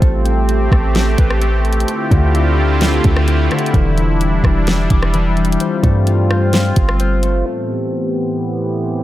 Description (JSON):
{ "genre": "hip hop, atmospheric cloud-rap", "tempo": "129 BPM", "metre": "4/4", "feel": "half-time", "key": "A minor", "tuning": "A4 = 439 Hz", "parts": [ { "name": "sweeping resonant pad", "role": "sustained chords", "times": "0.0-9.0 s", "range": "A2 to G4", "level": "-18 LUFS", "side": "equal", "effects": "chorus, low-pass filter" }, { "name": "concert harp", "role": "arpeggios", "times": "0.0-9.0 s", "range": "D3 to D6", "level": "-22 LUFS", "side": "left 4 dB", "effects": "low-pass filter, digital delay" }, { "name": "warm 808-style bass", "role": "bass", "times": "0.0-7.4 s", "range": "E1 to G2", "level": "-15 LUFS", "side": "equal", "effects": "none" }, { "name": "smooth R&B drum kit", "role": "drums", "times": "0.0-7.3 s", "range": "hi-hat, kick drum, rim click, snare drum", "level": "-16 LUFS", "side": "equal", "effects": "none" } ], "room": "light reverb, digital ambience", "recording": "none", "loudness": "-13 LUFS", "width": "side -14 dB against mid", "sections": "0.0-7.5 A section; 7.5-9.0 B section", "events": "filter sweep on analog synth pad 7.5-9.0", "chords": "0.0 Am9; 1.9 Dm11; 3.7 Em7; 5.6 G9sus4; 7.5 Am9", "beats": "| 0.02 0.49 0.95 1.42 | 1.88 2.35 2.81 3.28 | 3.74 4.21 4.67 5.14 | 5.60 6.07 6.53 7.00 | 7.46 7.93 8.39 8.86" }